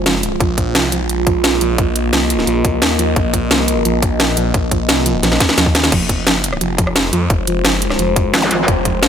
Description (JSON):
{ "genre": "dark technical drum and bass", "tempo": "174 BPM", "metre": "4/4", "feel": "straight", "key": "unclear", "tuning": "A4 = 442 Hz", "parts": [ { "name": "deep dark ambient pad", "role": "sustained chords", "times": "0.0-9.1 s", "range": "Ab3 to Eb5", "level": "-20 LUFS", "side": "left 1 dB", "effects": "chorus, built-in reverb, sidechain pumping" }, { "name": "soft round pluck", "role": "arpeggios", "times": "0.0-9.0 s", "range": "F3", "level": "-23 LUFS", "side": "right 4 dB", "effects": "lush chorus, sidechain pumping, tape echo" }, { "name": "phased detuned saw bass", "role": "bass", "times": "0.0-9.1 s", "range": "F1 to F2", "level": "-20 LUFS", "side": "equal", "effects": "phaser, tube saturation" }, { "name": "drum and bass drum kit", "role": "drums", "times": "0.1-9.1 s", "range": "crash cymbal, hi-hat, rim click, snare drum", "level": "-16 LUFS", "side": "equal", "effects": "overdrive, studio reverb" }, { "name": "electronic kick drum", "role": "drums", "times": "0.4-8.9 s", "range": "none", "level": "-17 LUFS", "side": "equal", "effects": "overdrive, studio reverb" }, { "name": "metallic wobble bass", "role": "bass", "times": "8.3-8.7 s", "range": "Ab1", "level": "-16 LUFS", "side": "equal", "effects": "chorus" }, { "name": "zap", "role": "sound effects", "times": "8.4-8.5 s", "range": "none", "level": "-20 LUFS", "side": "left 1 dB", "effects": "none" } ], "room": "light reverb, digital ambience", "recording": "none", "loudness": "-13 LUFS", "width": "side -8 dB against mid", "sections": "0.0-9.1 A section", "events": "drum fill 5.2-5.9", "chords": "0.4 Bbsus4; 5.9 Fm", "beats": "0.06 | 0.41 0.75 1.09 1.44 | 1.78 2.13 2.47 2.82 | 3.16 3.51 3.85 4.20 | 4.54 4.89 5.23 5.58 | 5.92 6.27 6.61 6.96 | 7.30 7.65 7.99 8.34 | 8.68 9.03" }